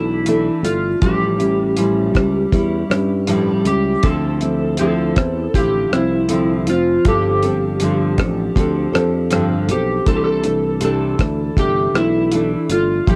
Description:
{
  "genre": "indie pop, bedroom pop",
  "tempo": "80 BPM",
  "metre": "4/4",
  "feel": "swing 55% on 16ths",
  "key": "C major",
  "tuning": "A4 = 440 Hz",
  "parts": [
    { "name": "electric slide guitar", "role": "melody", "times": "0.0-13.2 s", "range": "E4 to A4", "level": "-23 LUFS", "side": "equal", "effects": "lush chorus, cassette tape, plate reverb, analog delay" },
    { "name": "nylon-string guitar", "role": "accompaniment", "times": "0.0-13.2 s", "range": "G2 to A4", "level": "-21 LUFS", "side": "equal", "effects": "lush chorus, vibrato effect, cassette tape" },
    { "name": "sustaining fretless electric bass", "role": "bass", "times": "0.0-13.2 s", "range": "F1 to G2", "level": "-25 LUFS", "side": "equal", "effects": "none" },
    { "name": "cloth-damped thuddy drum kit", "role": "drums", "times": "0.3-13.2 s", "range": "hi-hat, kick drum, rim click", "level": "-21 LUFS", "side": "equal", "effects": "cassette tape" }
  ],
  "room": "moderate booth ambience, RT60 0.2 s",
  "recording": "home recording on cassette",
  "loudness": "-17 LUFS",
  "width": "mono",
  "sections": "0.0-13.2 A section",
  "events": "none",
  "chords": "0.0 C69 (rootless); 1.0 A7b13; 4.0 Dm9; 7.1 G9sus4; 10.1 C69",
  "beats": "0.27 | 1.02 1.77 2.53 3.28 | 4.04 4.79 5.54 6.30 | 7.05 7.80 8.56 9.31 | 10.06 10.82 11.57 12.32 | 13.07"
}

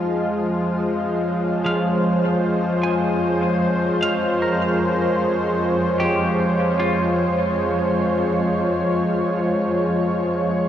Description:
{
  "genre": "ambient",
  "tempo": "76 BPM",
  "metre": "4/4",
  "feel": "straight",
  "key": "unclear",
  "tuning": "A4 = 441 Hz",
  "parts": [
    { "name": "warm analog pad", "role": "sustained chords", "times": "0.0-10.7 s", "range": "F3 to Eb5", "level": "-19 LUFS", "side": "equal", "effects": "chorus, cassette tape, shimmer reverb" },
    { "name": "warm chamber cello section", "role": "bass", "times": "0.0-10.7 s", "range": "F2", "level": "-28 LUFS", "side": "right 2 dB", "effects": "none" },
    { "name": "semi-hollow electric guitar", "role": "arpeggios", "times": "1.7-9.7 s", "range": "F3 to Ab5", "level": "-26 LUFS", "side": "right 1 dB", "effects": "cassette tape, analog delay, shimmer reverb" }
  ],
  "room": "wet spring reverb, RT60 2.2 s",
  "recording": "home recording on cassette",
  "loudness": "-18 LUFS",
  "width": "side -10 dB against mid",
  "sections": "0.0-10.7 A section",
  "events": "none",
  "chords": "0.1 Bbm7/F",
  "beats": "| 0.08 0.87 1.66 2.45 | 3.24 4.03 4.82 5.61 | 6.40 7.19 7.97 8.77 | 9.55 10.34"
}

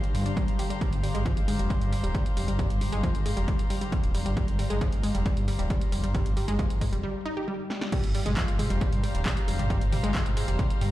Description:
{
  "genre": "driving peak-time techno",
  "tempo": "135 BPM",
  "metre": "4/4",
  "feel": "straight",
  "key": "G minor",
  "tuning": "A4 = 440 Hz",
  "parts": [
    { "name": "swarming drone", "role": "drone", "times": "0.0-10.9 s", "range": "G2 to D3", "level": "-39 LUFS", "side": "left 2 dB", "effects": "none" },
    { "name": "punchy analog drum machine", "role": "drums", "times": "0.0-10.9 s", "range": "crash cymbal, handclaps, hi-hat, snare drum, toms", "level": "-36 LUFS", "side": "equal", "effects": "overdrive, sidechain pumping on hats, sidechain pumping on toms, sidechain pumping on cymbals" },
    { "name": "rich chamber string section", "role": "texture", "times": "0.0-10.9 s", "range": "G4 to Bb5", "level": "-38 LUFS", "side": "equal", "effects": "sidechain pumping" },
    { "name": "wide unison pluck", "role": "riff", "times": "0.1-10.9 s", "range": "F3 to G4", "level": "-32 LUFS", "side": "equal", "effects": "cassette tape, sidechain pumping, ping-pong delay" },
    { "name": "growling FM bass", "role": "bass", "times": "0.1-10.9 s", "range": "D1 to G2", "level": "-29 LUFS", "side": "equal", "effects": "sidechain pumping" },
    { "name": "electronic kick drum", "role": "drums", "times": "0.4-10.7 s", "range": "none", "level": "-28 LUFS", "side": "equal", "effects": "overdrive" }
  ],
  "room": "digital ambience",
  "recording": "played on a big sound system in a bare room, large studio reverb",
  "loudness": "-25 LUFS",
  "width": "side -15 dB against mid",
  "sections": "0.0-7.9 A section; 7.9-10.9 B section",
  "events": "filter sweep on synth arpeggio sound 0.0-7.9; break 7.0-7.9; drum fill 7.7; drop 7.9-10.9",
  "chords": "0.0 Gm",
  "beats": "0.37 | 0.81 1.26 1.70 2.15 | 2.59 3.04 3.48 3.92 | 4.37 4.81 5.26 5.70 | 6.15 6.59 7.04 7.48 | 7.92 8.37 8.81 9.26 | 9.70 10.15 10.59"
}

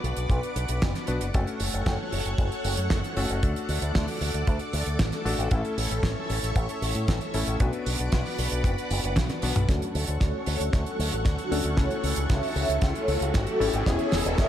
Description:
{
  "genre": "italo disco",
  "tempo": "115 BPM",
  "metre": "4/4",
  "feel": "straight",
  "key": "unclear",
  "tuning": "A4 = 439 Hz",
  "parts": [
    { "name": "string machine, full ensemble", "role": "sustained chords", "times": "0.0-14.5 s", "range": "A4 to D6", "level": "-33 LUFS", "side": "equal", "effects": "ensemble chorus" },
    { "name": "clear electric grand piano", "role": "stabs", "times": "0.0-14.5 s", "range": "A3 to B4", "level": "-34 LUFS", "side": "left 4 dB", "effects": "low-pass filter, ping-pong delay" },
    { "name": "fingered electric bass with an envelope filter", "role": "bass", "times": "0.0-14.5 s", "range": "E1 to A2", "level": "-29 LUFS", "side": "equal", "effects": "none" },
    { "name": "damped 70s drum kit", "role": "drums", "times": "0.0-14.5 s", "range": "hi-hat, snare drum, toms", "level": "-31 LUFS", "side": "right 2 dB", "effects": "studio reverb, gated reverb" },
    { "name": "kick drum", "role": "drums", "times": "0.3-14.5 s", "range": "none", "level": "-25 LUFS", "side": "equal", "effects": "studio reverb" },
    { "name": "mellow synth brass", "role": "melody", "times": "9.7-14.5 s", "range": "D4 to E5", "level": "-30 LUFS", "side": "equal", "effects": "chorus, vintage 12-bit sampler grit, digital delay" },
    { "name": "riser", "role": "sound effects", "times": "11.4-14.5 s", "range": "none", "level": "-36 LUFS", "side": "left 1 dB", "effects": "none" }
  ],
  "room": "light reverb, studio reverb",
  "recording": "none",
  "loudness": "-24 LUFS",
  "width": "side -11 dB against mid",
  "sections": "0.0-9.7 A section; 9.7-14.5 B section",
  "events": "drum fill 9.2-9.7, 9.7-14.5; filter sweep on electric grand piano 9.7-14.5; filter sweep on analog polysynth 9.7-14.5; riser 11.4-14.5",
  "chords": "0.0 Bm; 1.3 F#m; 3.4 D; 5.5 A; 7.6 Bm; 9.7 Dmaj7; 11.8 A6/C#; 13.9 E6",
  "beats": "0.30 0.82 | 1.34 1.86 2.38 2.91 | 3.43 3.95 4.47 4.99 | 5.51 6.04 6.56 7.08 | 7.60 8.12 8.65 9.17 | 9.69 10.21 10.73 11.25 | 11.78 12.30 12.82 13.34 | 13.86 14.38"
}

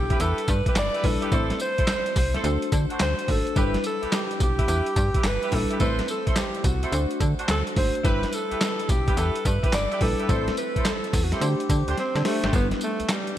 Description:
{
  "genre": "R&B, new jack swing",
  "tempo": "107 BPM",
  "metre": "4/4",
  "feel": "swing 66% on 16ths",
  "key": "G major",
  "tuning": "A4 = 440 Hz",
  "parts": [
    { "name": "warm alto saxophone", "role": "melody", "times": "0.0-13.4 s", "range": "G3 to D5", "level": "-28 LUFS", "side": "equal", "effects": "ping-pong delay" },
    { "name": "mellow FM electric piano", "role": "accompaniment", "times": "0.0-13.4 s", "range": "G3 to C5", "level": "-30 LUFS", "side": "left 1 dB", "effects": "chorus" },
    { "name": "slap-like FM bass", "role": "bass", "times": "0.0-13.0 s", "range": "G1 to D3", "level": "-26 LUFS", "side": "equal", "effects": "none" },
    { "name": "warm horn section", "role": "stabs", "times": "0.1-12.6 s", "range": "D4 to C5", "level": "-32 LUFS", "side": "right 2 dB", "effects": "none" },
    { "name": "boom bap sampler-style drum kit", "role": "drums", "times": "0.1-13.4 s", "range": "handclaps, hi-hat, kick drum, snare drum, tambourine", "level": "-25 LUFS", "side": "equal", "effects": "gated reverb" }
  ],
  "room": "light reverb, digital ambience",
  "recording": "bright 1980s-style digital production",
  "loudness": "-21 LUFS",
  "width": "side -12 dB against mid",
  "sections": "0.0-12.5 A section",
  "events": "drum fill 12.0-12.5",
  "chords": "0.0 G6; 1.3 Am; 2.4 D7; 3.6 G6; 5.8 Am; 6.9 D7; 8.0 G6; 10.3 Am; 11.4 D7sus4; 12.5 G6",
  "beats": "0.20 0.76 | 1.32 1.88 2.44 3.00 | 3.56 4.12 4.68 5.24 | 5.80 6.37 6.93 7.49 | 8.05 8.61 9.17 9.73 | 10.29 10.85 11.41 11.97 | 12.53 13.09"
}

